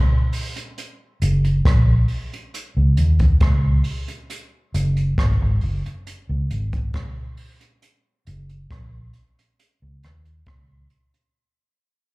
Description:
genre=roots reggae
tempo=68 BPM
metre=4/4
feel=straight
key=F# major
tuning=A4 = 441 Hz
part: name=jazz brush drum kit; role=drums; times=0.3-11.3 s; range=hi-hat, kick drum, rim click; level=-21 LUFS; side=equal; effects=none
part: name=vintage muted fingered electric bass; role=bass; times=1.2-10.8 s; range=F#1 to D#2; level=-18 LUFS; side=equal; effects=none
room=little or no reverb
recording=live gig heard through the venue's PA, club reverb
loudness=-17 LUFS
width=side -25 dB against mid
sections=0.0-11.3 A section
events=fade-out 0.0-11.3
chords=none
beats=| 0.77 1.65 2.53 3.41 | 4.29 5.18 6.06 6.94 | 7.82 8.70 9.58 10.46

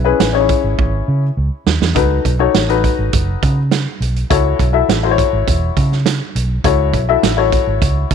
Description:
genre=uptempo 1960s-style soul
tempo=102 BPM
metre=4/4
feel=straight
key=unclear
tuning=A4 = 440 Hz
part: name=dark upright piano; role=accompaniment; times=0.0-8.1 s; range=C#4 to E5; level=-16 LUFS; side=left 12 dB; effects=none
part: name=vintage muted fingered electric bass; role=bass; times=0.0-8.1 s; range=E1 to C#3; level=-17 LUFS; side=right 1 dB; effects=none
part: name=vintage drum kit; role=drums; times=0.2-8.1 s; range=hi-hat, kick drum, snare drum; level=-18 LUFS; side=right 5 dB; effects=none
room=light reverb, small room ambience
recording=1960s-style stereo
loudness=-13 LUFS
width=side -7 dB against mid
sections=0.0-8.1 A section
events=drum fill 0.8-2.0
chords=0.0 C#m7; 2.0 B7; 4.3 A6; 6.6 F#m7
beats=0.20 0.78 1.37 | 1.96 2.54 3.13 3.72 | 4.30 4.89 5.47 6.06 | 6.64 7.23 7.82

